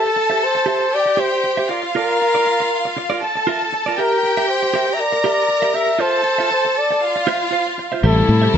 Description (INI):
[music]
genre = disco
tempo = 118 BPM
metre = 4/4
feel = straight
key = D minor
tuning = A4 = 440 Hz
[part]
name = breathy flugelhorn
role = melody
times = 0.0-8.6 s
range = A4 to E5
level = -18 LUFS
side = left 1 dB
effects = low-pass filter
[part]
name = rich studio violin section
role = second line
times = 0.0-8.0 s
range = F4 to Bb5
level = -20 LUFS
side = equal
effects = none
[part]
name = clean electric guitar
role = accompaniment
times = 0.0-8.6 s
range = F4 to F5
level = -24 LUFS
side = right 7 dB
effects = low-pass filter
[part]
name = clear studio string section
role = sustained chords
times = 8.0-8.6 s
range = C3 to E4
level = -19 LUFS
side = left 4 dB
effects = none
[part]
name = fingered electric bass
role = bass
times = 8.0-8.6 s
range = A1 to A2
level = -14 LUFS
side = left 1 dB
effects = none
[sound]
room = light reverb, small room ambience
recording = nothing above 8.0 kHz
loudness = -15 LUFS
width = side -8 dB against mid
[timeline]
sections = 0.0-8.0 A section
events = filter sweep 0.0-8.0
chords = 0.0 Am7; 1.7 Bbmaj7/F; 4.0 Gm6; 6.0 Dm9; 8.0 Am7